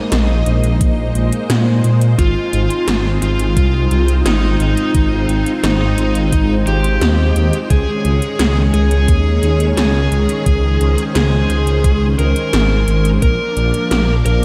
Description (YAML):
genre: synthwave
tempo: 87 BPM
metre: 4/4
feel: straight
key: Ab major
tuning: A4 = 440 Hz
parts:
  - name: string machine, full ensemble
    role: sustained chords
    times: 0.0-14.4 s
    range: Eb3 to Eb5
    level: -23 LUFS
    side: equal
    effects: ensemble chorus, sidechain pumping
  - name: dark detuned saw bass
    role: bass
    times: 0.1-14.4 s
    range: Ab1 to Bb2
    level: -17 LUFS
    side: equal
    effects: none
  - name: 80s electronic pad drums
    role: drums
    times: 0.1-14.4 s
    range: hi-hat, snare drum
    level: -24 LUFS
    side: equal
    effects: overdrive
  - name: electronic kick drum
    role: drums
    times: 0.8-13.4 s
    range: none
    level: -17 LUFS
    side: equal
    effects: none
  - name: high-gain lead guitar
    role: melody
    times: 2.2-14.4 s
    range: Eb4 to Bb4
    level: -22 LUFS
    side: equal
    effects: distortion, diffuse ambient delay
room: moderate lush hall reverb, RT60 2.5 s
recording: dreamy mix soaked in reverb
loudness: -15 LUFS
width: mono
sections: 0.0-14.4 A section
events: none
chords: 0.0 Ebsus4/Bb; 2.2 Ab6; 7.7 Dbsus2; 13.2 Bb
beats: 0.12 0.81 1.50 | 2.19 2.88 3.57 4.26 | 4.95 5.64 6.33 7.01 | 7.71 8.39 9.08 9.77 | 10.46 11.15 11.84 12.53 | 13.22 13.91